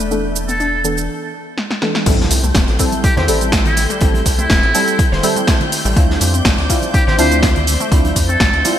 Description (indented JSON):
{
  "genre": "deep house",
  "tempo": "123 BPM",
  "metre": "4/4",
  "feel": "swing 53% on 16ths",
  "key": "A minor",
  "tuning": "A4 = 437 Hz",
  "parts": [
    { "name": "airy breathy pad", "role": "sustained chords", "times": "0.0-8.8 s", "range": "A4 to D6", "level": "-28 LUFS", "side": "equal", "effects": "chorus, sidechain pumping" },
    { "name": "warbly dusty pluck", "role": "arpeggios", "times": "0.0-8.5 s", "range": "G3 to C5", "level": "-25 LUFS", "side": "left 5 dB", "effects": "chorus, sidechain pumping, ping-pong delay" },
    { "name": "deep mellow chord stab", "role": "stabs", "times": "0.0-8.8 s", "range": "E3 to A4", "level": "-21 LUFS", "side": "right 1 dB", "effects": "chorus, cassette tape, digital delay" },
    { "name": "rubbery square bass", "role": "bass", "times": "0.0-8.6 s", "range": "E1 to F2", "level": "-19 LUFS", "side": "equal", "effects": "tube saturation" },
    { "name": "punchy analog drum machine", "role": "drums", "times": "0.0-8.8 s", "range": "crash cymbal, hi-hat, shaker, snare drum", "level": "-19 LUFS", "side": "equal", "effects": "overdrive, gated reverb" },
    { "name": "soft string machine", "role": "texture", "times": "0.0-8.8 s", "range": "G6", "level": "-28 LUFS", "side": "equal", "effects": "phaser, ensemble chorus, sidechain pumping" },
    { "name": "trumpet with metal mute", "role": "melody", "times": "0.5-8.6 s", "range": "E4 to C5", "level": "-20 LUFS", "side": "equal", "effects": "ping-pong delay" },
    { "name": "electronic kick drum", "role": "drums", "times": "2.1-8.5 s", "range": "none", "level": "-16 LUFS", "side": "equal", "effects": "overdrive" },
    { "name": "raw garage drum kit", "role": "drums", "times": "2.1-8.8 s", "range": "hi-hat, snare drum", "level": "-27 LUFS", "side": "equal", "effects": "high-pass filter on hats, high-pass filter on snare, high-pass filter on room, gated reverb" },
    { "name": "impact", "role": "sound effects", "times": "2.1-4.0 s", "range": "none", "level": "-25 LUFS", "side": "equal", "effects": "none" },
    { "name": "congas", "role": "percussion", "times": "2.2-8.8 s", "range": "none", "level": "-28 LUFS", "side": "right 4 dB", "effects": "none" }
  ],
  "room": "light reverb",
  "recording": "bright 1980s-style digital production",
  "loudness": "-12 LUFS",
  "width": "side -10 dB against mid",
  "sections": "0.0-2.1 A section; 2.1-8.8 B section",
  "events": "break 1.1-2.1; drum fill 1.6-2.1; drop 2.1-8.8; impact 2.1-4.0",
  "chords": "0.0 E7sus4; 2.1 Am7; 6.0 Dm9"
}